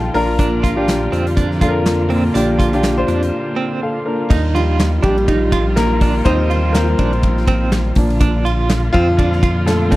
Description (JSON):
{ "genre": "piano-driven pop", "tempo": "123 BPM", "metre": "4/4", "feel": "swing 56% on 16ths", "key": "unclear", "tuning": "A4 = 437 Hz", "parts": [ { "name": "warm baby grand piano", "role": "accompaniment", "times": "0.0-10.0 s", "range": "Bb2 to Bb5", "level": "-18 LUFS", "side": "left 1 dB", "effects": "none" }, { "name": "dark studio string section", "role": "sustained chords", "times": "0.0-10.0 s", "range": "Bb2 to F4", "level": "-24 LUFS", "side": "equal", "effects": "none" }, { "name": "chorused synth bass", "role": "bass", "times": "0.0-10.0 s", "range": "Bb1 to F2", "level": "-18 LUFS", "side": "equal", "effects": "none" }, { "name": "modern studio drum kit", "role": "drums", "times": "0.1-10.0 s", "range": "crash cymbal, handclaps, hi-hat, kick drum, ride cymbal, snare drum", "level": "-19 LUFS", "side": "equal", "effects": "none" }, { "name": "direct-recorded clean electric guitar", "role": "riff", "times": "0.4-10.0 s", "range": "C4 to F4", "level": "-22 LUFS", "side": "right 6 dB", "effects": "tremolo" } ], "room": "little or no reverb", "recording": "none", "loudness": "-13 LUFS", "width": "side -17 dB against mid", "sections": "0.0-4.3 A section; 4.3-10.0 B section", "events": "grand piano fill 0.0-0.4; break 3.3-4.3; grand piano solo 4.3-10.0", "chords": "0.1 Bb; 4.3 Ebadd9; 8.0 Bb" }